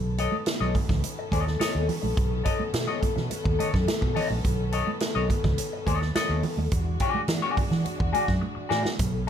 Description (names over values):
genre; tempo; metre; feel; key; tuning
funk; 106 BPM; 4/4; straight; unclear; A4 = 439 Hz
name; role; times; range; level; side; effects
warm studio string section; sustained chords; 0.0-9.3 s; D#3 to A4; -33 LUFS; left 3 dB; none
vintage muted fingered electric bass; bass; 0.0-9.3 s; A#1 to E3; -28 LUFS; right 1 dB; none
semi-hollow electric guitar; accompaniment; 0.2-9.3 s; F#4 to D#5; -29 LUFS; left 5 dB; wah
swinging big-band drum kit; drums; 0.2-9.1 s; hi-hat, kick drum, snare drum; -28 LUFS; right 1 dB; none
congas; percussion; 0.2-9.1 s; none; -34 LUFS; right 6 dB; none
room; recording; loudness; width
moderate studio reverb, RT60 0.6 s; none; -23 LUFS; side -9 dB against mid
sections
0.0-9.3 A section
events
drum fill 8.4-9.0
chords
0.0 B9; 6.7 E9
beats
0.46 1.03 1.60 | 2.17 2.74 3.31 3.88 | 4.45 5.01 5.58 6.15 | 6.72 7.29 7.86 8.43 | 9.00